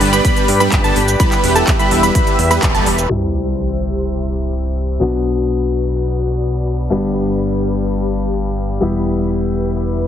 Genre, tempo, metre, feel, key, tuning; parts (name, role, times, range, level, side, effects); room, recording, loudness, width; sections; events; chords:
EDM, festival progressive house; 126 BPM; 4/4; straight; A4 = 440 Hz
lush unison pad; sustained chords; 0.0-10.1 s; F#4 to C6; -22 LUFS; equal; chorus, sidechain pumping
wide unison pluck; arpeggios; 0.0-2.9 s; A5 to B5; -20 LUFS; equal; cassette tape, sidechain pumping, ping-pong delay
supersaw chords; riff; 0.0-2.9 s; G3 to B4; -18 LUFS; right 1 dB; wide subtle chorus, sidechain pumping, ping-pong delay
fat analog bass; bass; 0.0-10.1 s; E1 to G2; -20 LUFS; equal; sidechain pumping
big-room dance drum kit; drums; 0.0-10.1 s; cabasa, handclaps, hi-hat; -21 LUFS; right 1 dB; low-pass filter on hats, low-pass filter on perc, low-pass filter on snare
electronic kick drum; drums; 0.2-2.7 s; -16 LUFS; equal
bright grand piano; accompaniment; 3.1-10.1 s; G2 to G4; -18 LUFS; left 3 dB; sidechain pumping, ping-pong delay
sub drop; sound effects; 3.1-5.0 s; -25 LUFS; equal
moderate lush hall reverb, RT60 1.8 s; heavily compressed radio sound, multiband compression, low-pass filter; -14 LUFS; side -9 dB against mid
0.0-3.1 A section; 3.1-10.1 B section
drop 0.0-3.1; band accent 2.6; impact 3.1-5.0; filter sweep on analog synth pad 3.1-10.1; filter sweep 3.1-10.1
0.0 G; 1.2 Em; 3.1 C; 5.0 Bm; 6.9 G; 8.8 Em